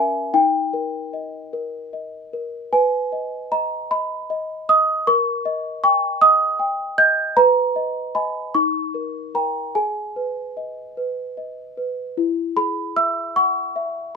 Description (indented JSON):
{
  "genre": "classical, lullaby for celesta",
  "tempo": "51 BPM (dotted quarters)",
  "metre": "6/8",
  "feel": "straight",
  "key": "G# minor",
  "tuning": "A4 = 445 Hz",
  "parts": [
    { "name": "small celesta", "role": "solo", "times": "0.0-14.2 s", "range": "C#4 to G6", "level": "-18 LUFS", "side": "equal", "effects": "none" }
  ],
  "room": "light reverb",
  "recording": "minimal, uncompressed stereo recording",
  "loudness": "-18 LUFS",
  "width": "side -5 dB against mid",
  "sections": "0.0-12.2 A section; 12.2-14.2 B section",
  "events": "none",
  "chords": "0.3 D#; 2.7 G#m/B; 5.1 D#7/A#; 7.4 G#m/B; 8.5 D#7; 9.8 G#m; 12.2 E"
}